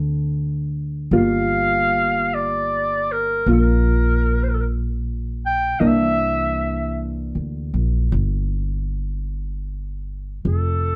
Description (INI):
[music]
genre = jazz ballad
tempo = 51 BPM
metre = 4/4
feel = swing 66% on 8ths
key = unclear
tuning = A4 = 441 Hz
[part]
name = hollow-body jazz guitar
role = accompaniment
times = 0.0-10.5 s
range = D3 to A4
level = -26 LUFS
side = equal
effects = none
[part]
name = upright bass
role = bass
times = 0.0-11.0 s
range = F1 to D2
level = -25 LUFS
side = equal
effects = none
[part]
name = clear clarinet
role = melody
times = 1.2-11.0 s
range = A4 to G5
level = -24 LUFS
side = equal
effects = none
[sound]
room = moderate studio reverb, RT60 0.7 s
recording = dark, warm production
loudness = -21 LUFS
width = mono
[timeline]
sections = 0.0-11.0 A section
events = none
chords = 0.0 D7; 1.1 Gm7; 5.8 C9; 10.4 F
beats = | 1.12 2.29 3.46 4.63 | 5.80 6.96 8.12 9.28 | 10.44